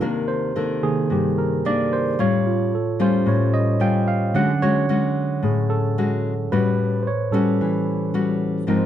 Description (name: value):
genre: bossa nova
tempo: 111 BPM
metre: 4/4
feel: straight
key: unclear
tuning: A4 = 440 Hz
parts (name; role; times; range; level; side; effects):
- barky tine electric piano; accompaniment; 0.0-8.9 s; Ab2 to G5; -22 LUFS; right 4 dB; none
- nylon-string guitar; accompaniment; 0.0-8.9 s; G2 to F#4; -21 LUFS; left 4 dB; none
room: moderate large studio reverb, RT60 1.0 s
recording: none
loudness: -18 LUFS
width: side -10 dB against mid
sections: 0.0-8.9 A section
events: tine electric piano solo 0.0-8.9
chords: 0.0 Cm9; 2.2 Aaug7; 4.4 Dmaj7#11; 6.5 A13